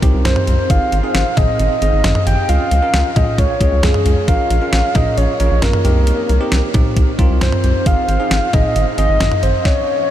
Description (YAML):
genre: synth-pop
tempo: 134 BPM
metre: 4/4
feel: straight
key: unclear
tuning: A4 = 442 Hz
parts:
  - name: bell-like tine electric piano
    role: accompaniment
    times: 0.0-9.5 s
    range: C4 to Bb4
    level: -24 LUFS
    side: right 1 dB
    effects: none
  - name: rubbery square bass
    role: bass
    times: 0.0-9.5 s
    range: Ab1 to Db2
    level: -16 LUFS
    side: equal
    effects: none
  - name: clean 12-bit digital drum machine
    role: drums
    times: 0.0-9.8 s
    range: hi-hat, kick drum, snare drum, toms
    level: -17 LUFS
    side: equal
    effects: none
  - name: soft octave-layered synth lead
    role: melody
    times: 0.3-10.1 s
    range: Ab4 to G5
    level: -18 LUFS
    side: equal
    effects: chorus, diffuse ambient delay
room: moderate huge ambient reverb, RT60 8.4 s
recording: dreamy mix soaked in reverb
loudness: -12 LUFS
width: side -11 dB against mid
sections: 0.0-10.1 A section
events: none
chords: 0.0 Cm; 0.7 Ab; 2.5 Db; 4.3 Bbm; 5.8 Cm7; 7.9 Ab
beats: 0.25 | 0.70 1.15 1.59 2.04 | 2.49 2.94 3.38 3.83 | 4.28 4.73 5.18 5.62 | 6.07 6.52 6.97 7.42 | 7.86 8.31 8.76 9.21 | 9.65 10.10